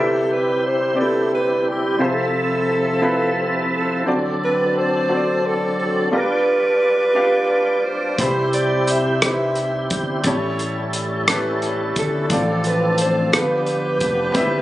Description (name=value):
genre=slow gospel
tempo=58 BPM (dotted quarters)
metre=6/8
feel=straight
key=C major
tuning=A4 = 441 Hz
part: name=growling alto saxophone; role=melody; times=0.0-14.6 s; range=G4 to E5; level=-21 LUFS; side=right 1 dB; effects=tape echo
part: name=clear baby grand piano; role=accompaniment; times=0.0-14.6 s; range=G2 to B5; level=-22 LUFS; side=left 1 dB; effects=none
part: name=tonewheel organ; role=sustained chords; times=0.0-14.6 s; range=C3 to E5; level=-22 LUFS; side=right 1 dB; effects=slow rotary speaker, overdrive, chorus vibrato
part: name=fingered electric bass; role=bass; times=8.2-14.6 s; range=F1 to C2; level=-26 LUFS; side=equal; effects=none
part: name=warm soul drum kit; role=drums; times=8.2-14.5 s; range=hi-hat, kick drum, rim click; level=-22 LUFS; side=equal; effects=none
room=light reverb, small room reverb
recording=recorded on a phone in the room, club reverb, nothing above 10.3 kHz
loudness=-17 LUFS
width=side -15 dB against mid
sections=0.0-14.6 A section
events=none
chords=0.0 Cmaj7; 2.0 Fmaj7/C; 4.1 D7; 6.1 G7; 8.2 Cmaj7; 10.2 A7; 12.3 Dm7/A; 13.3 G7